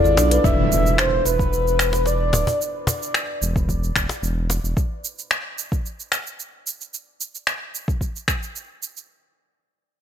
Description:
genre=organic downtempo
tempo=111 BPM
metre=4/4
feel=straight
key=unclear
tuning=A4 = 442 Hz
part: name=breathy flute-like synth lead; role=melody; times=0.0-2.6 s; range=B4 to E5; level=-22 LUFS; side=left 1 dB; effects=lush chorus, tape echo
part: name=smooth synth bass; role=bass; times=0.0-4.7 s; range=D1 to B1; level=-22 LUFS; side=equal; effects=none
part: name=organic electronic drum kit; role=drums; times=0.1-9.1 s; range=finger snaps, hi-hat, shaker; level=-24 LUFS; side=equal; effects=none
part: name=cajon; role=percussion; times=0.2-4.6 s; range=none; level=-25 LUFS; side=left 2 dB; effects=none
part: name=electronic kick drum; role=drums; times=0.4-8.4 s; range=none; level=-23 LUFS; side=equal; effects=none
part: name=impact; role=sound effects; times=0.4-2.6 s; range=none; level=-26 LUFS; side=equal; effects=none
room=light reverb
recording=none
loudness=-19 LUFS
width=side -9 dB against mid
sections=0.4-9.1 A section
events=break 0.0-0.4; impact 0.4-2.6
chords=0.4 E5; 4.8 N.C.

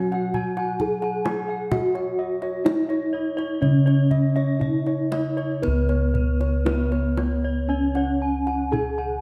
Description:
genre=Javanese gamelan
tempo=58-68 BPM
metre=4/4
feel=straight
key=C# slendro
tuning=A4 = 442 Hz
part: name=gamelan-type bronze metallophone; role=melody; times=0.0-9.2 s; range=B3-40c to G#4+20c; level=-27 LUFS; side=equal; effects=none
part: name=gamelan-type bossed gongs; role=arpeggios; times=0.0-9.2 s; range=B4-40c to G#5+20c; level=-35 LUFS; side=equal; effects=none
part: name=gamelan-type bronze metallophone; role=arpeggios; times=0.0-9.2 s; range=B4-40c to G#5+20c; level=-35 LUFS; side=equal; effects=none
part: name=gamelan-type bossed gongs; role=bass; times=0.0-9.2 s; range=C#2 to B4-40c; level=-26 LUFS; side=equal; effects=none
part: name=kendang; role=percussion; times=0.1-9.0 s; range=none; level=-32 LUFS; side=equal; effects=none
room=light reverb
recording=dark, warm production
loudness=-23 LUFS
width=mono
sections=0.0-5.6 A section; 5.6-9.2 B section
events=none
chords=none

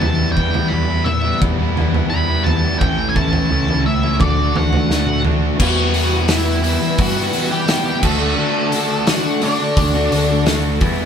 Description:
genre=quiet-loud alternative rock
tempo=86 BPM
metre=4/4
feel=straight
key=E minor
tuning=A4 = 438 Hz
part: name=octave-fuzz lead guitar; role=melody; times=0.0-10.4 s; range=D4 to B5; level=-21 LUFS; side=left 1 dB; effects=distortion
part: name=distorted electric guitar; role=riff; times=0.0-11.1 s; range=A2 to F#4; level=-22 LUFS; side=right 6 dB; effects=distortion
part: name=thick fuzz guitar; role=riff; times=0.0-11.1 s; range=A2 to G4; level=-22 LUFS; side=left 8 dB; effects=distortion
part: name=overdriven picked electric bass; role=bass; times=0.0-11.1 s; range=A1 to G2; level=-20 LUFS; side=equal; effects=none
part: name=loose indie drum kit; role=drums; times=0.0-11.0 s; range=crash cymbal, hi-hat, kick drum, snare drum, toms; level=-20 LUFS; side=equal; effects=none
part: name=ensemble organ-string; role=sustained chords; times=5.6-11.1 s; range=A4 to E6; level=-29 LUFS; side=equal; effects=phaser, ensemble chorus
room=light reverb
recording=band playing live in one room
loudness=-14 LUFS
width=side -8 dB against mid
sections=0.0-5.6 A section; 5.6-11.1 B section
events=lead electric guitar solo 0.0-5.6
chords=0.0 Em; 2.8 A; 4.2 D; 5.6 Em; 8.0 D

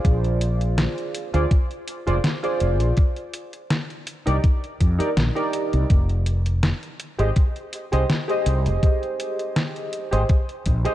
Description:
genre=vaporwave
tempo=82 BPM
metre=4/4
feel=swing 54% on 16ths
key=F dorian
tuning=A4 = 440 Hz
part: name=warbly lo-fi synth keys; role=accompaniment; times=0.0-10.9 s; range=Eb4 to Eb5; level=-26 LUFS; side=right 1 dB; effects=wide subtle chorus, analog delay
part: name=fretless electric bass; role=bass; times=0.0-10.9 s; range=F1 to F2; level=-21 LUFS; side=equal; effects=none
part: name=detuned 8-bit digital drum machine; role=drums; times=0.0-10.9 s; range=hi-hat, snare drum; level=-26 LUFS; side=equal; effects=vintage 12-bit sampler grit, studio reverb
part: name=electronic kick drum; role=drums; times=0.0-10.8 s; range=none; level=-18 LUFS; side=equal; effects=vintage 12-bit sampler grit, studio reverb
room=light reverb, digital ambience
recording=cassette tape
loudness=-20 LUFS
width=side -14 dB against mid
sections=0.0-10.9 A section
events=none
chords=0.0 Bb7; 3.0 Cm7 (rootless); 5.9 Fm7

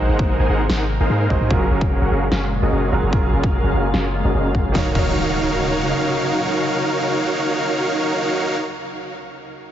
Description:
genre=future bass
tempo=148 BPM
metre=4/4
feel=half-time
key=Eb dorian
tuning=A4 = 441 Hz
part: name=clear baby grand piano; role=accompaniment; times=0.0-9.7 s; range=Eb3 to F5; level=-28 LUFS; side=right 5 dB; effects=sidechain pumping, tape echo
part: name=shimmering ambient pad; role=sustained chords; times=0.1-8.4 s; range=Bb2 to F5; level=-28 LUFS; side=left 1 dB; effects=chorus, built-in reverb, sidechain pumping
part: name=supersaw chords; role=riff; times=0.0-8.6 s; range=Db4 to Ab5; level=-21 LUFS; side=right 1 dB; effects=sidechain pumping, low-pass filter, tape echo
part: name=warm 808-style bass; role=bass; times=0.0-5.9 s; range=Eb1 to Ab2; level=-21 LUFS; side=equal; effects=sidechain pumping
part: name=electronic kick drum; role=drums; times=0.2-5.1 s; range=none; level=-20 LUFS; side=equal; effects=studio reverb
part: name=dubstep drum kit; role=drums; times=0.7-5.1 s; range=crash cymbal, snare drum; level=-27 LUFS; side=left 1 dB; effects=low-pass filter on snare, studio reverb, low-pass filter on cymbals
part: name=impact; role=sound effects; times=4.8-8.4 s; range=none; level=-30 LUFS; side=left 1 dB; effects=none
room=light reverb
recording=heavily compressed radio sound, nothing above 7.7 kHz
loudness=-17 LUFS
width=side -10 dB against mid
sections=0.0-4.8 A section; 4.8-8.0 B section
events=filter sweep on supersaw synth 0.0-4.8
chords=0.0 Ab9; 1.5 Gbmaj9; 4.8 Ebm9

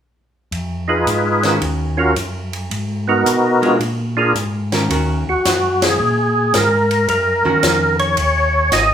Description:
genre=soul jazz organ trio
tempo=110 BPM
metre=4/4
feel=swing 67% on 8ths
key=Eb minor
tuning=A4 = 440 Hz
part: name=mellow tonewheel organ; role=bass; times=0.5-8.9 s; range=Ab1 to Cb3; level=-22 LUFS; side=equal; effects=chorus vibrato, slow rotary speaker
part: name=compact cocktail drum kit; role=drums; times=0.5-8.9 s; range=hi-hat, ride cymbal, snare drum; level=-23 LUFS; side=left 1 dB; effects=none
part: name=percussive tonewheel organ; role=melody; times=0.9-8.9 s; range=Cb4 to Eb5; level=-15 LUFS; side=equal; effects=slow rotary speaker, overdrive, chorus vibrato
part: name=archtop guitar, miked and amplified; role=accompaniment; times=1.4-8.1 s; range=Eb3 to Bb4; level=-21 LUFS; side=right 1 dB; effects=none
room=moderate large studio reverb, RT60 0.9 s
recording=band playing live in one room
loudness=-14 LUFS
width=side -9 dB against mid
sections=0.5-4.9 A section; 4.9-8.9 B section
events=band accent 5.7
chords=0.5 Fm7b5; 1.6 Ebm7; 2.7 Abm9; 3.8 Bb7; 4.9 Ebm7

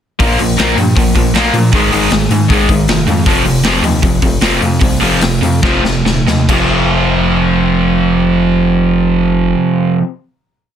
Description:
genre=punk rock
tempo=134-158 BPM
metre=4/4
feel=straight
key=unclear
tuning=A4 = 440 Hz
part: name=overdriven electric guitar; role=riff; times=0.2-10.0 s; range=F2 to Bb3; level=-14 LUFS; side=right 8 dB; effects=none
part: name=raw garage guitar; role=riff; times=0.2-10.0 s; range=F2 to Bb3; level=-16 LUFS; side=left 12 dB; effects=overdrive
part: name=growling FM bass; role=bass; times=0.2-9.6 s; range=Eb1 to Bb2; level=-17 LUFS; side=left 1 dB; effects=none
part: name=raw garage drum kit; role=drums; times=0.2-6.6 s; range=crash cymbal, hi-hat, kick drum, snare drum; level=-15 LUFS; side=left 1 dB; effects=none
room=little or no reverb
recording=dense, heavily limited modern master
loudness=-10 LUFS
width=side -9 dB against mid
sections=0.2-6.5 verse; 6.5-10.1 final chord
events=slowing down 3.3-6.5; drum fill 5.6-6.5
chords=0.2 Bb5; 1.7 Ab5; 3.3 F5

